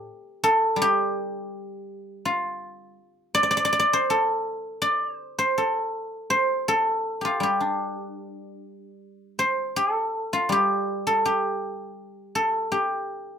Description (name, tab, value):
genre	chinese traditional, Chinese solo plucked strings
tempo	81 BPM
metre	4/4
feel	rubato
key	unclear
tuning	A4 = 445 Hz
part	guzheng	solo	0.0-13.4 s	G3 to D6	-22 LUFS	equal	none
room	light reverb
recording	rough home demo mix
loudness	-22 LUFS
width	side -8 dB against mid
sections	0.0-13.4 A section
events	none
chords	none